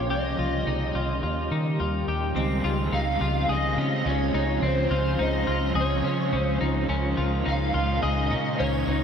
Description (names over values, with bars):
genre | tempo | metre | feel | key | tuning
dream pop | 106 BPM | 4/4 | straight | Db lydian | A4 = 440 Hz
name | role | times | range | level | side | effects
overdriven slide guitar | melody | 0.0-9.0 s | C5 to F5 | -29 LUFS | equal | ensemble chorus, ping-pong delay
shimmering ambient pad | sustained chords | 0.0-9.0 s | Bb2 to G4 | -29 LUFS | equal | chorus, built-in reverb
clean electric guitar | arpeggios | 0.0-9.0 s | C4 to Ab4 | -30 LUFS | left 3 dB | analog chorus, ping-pong delay
vintage muted fingered electric bass | bass | 0.0-9.0 s | Bb1 to Eb3 | -27 LUFS | equal | none
raw garage guitar | accompaniment | 2.4-9.0 s | Db3 to Bb4 | -34 LUFS | right 4 dB | overdrive, tremolo, wide subtle chorus
shimmering bell with halo | texture | 2.4-9.0 s | Db5 to C6 | -45 LUFS | left 1 dB | none
room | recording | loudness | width
wet huge ambient reverb, RT60 7.4 s | dreamy mix soaked in reverb | -23 LUFS | side -7 dB against mid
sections
0.0-2.4 A section; 2.4-9.0 B section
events
none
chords
0.1 Cm; 1.2 Eb; 2.4 Dbmaj7; 6.9 Eb7sus4/Db